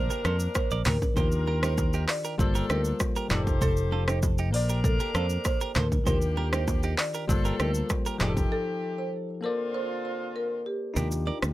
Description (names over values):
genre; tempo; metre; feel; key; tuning
afrobeats; 98 BPM; 4/4; straight; unclear; A4 = 445 Hz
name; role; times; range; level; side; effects
marimba with medium mallets; melody; 0.0-10.8 s; G4 to D5; -33 LUFS; equal; digital delay
mellow horn section; second line; 0.0-10.6 s; D3 to C5; -36 LUFS; left 2 dB; none
bell-like tine electric piano; accompaniment; 0.0-11.5 s; Eb3 to D5; -34 LUFS; left 3 dB; none
fingered electric bass; bass; 0.0-11.5 s; F1 to F2; -28 LUFS; equal; none
direct-recorded clean electric guitar; riff; 0.1-11.4 s; Eb4 to D5; -36 LUFS; right 6 dB; digital delay
afro-pop drum kit; drums; 0.1-11.5 s; handclaps, hi-hat, kick drum, rim click, shaker, toms; -28 LUFS; equal; none
bongos and congas; percussion; 0.2-11.5 s; none; -35 LUFS; right 1 dB; none
room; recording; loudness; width
little or no reverb; none; -25 LUFS; side -16 dB against mid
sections
0.0-11.0 A section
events
break 8.5-11.0; kick muted 11.0-11.5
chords
0.0 Bbadd9; 1.2 Ebmaj9; 2.4 Gm11; 3.3 F9; 4.5 Bbmaj9; 6.1 Ebmaj9; 7.3 Gm11; 8.2 F9; 9.4 Bbmaj9; 11.0 Ebmaj9